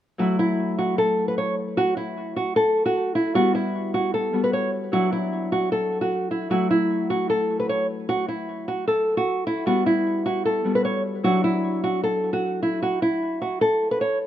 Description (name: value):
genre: hip hop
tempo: 152 BPM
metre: 4/4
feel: half-time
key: F# phrygian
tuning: A4 = 440 Hz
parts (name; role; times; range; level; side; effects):
- nylon-string guitar; melody; 0.2-14.2 s; E4 to C#5; -22 LUFS; right 1 dB; low-pass filter
- Celtic harp; accompaniment; 0.2-14.0 s; F#3 to F#4; -27 LUFS; left 3 dB; low-pass filter
room: light reverb, small room ambience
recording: rough home demo mix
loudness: -21 LUFS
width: side -11 dB against mid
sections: 0.2-12.8 A section; 12.8-14.3 B section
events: none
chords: 0.2 F#m7; 3.4 Gmaj7; 4.9 Dadd9; 6.5 F#m7; 9.7 Gmaj7; 11.2 Dadd9; 12.8 N.C.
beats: | 0.19 0.59 0.98 1.38 | 1.77 2.17 2.56 2.96 | 3.35 3.75 4.14 4.53 | 4.93 5.32 5.72 6.11 | 6.51 6.90 7.30 7.69 | 8.09 8.48 8.88 9.27 | 9.67 10.06 10.46 10.85 | 11.24 11.64 12.03 12.43 | 12.82 13.22 13.61 14.01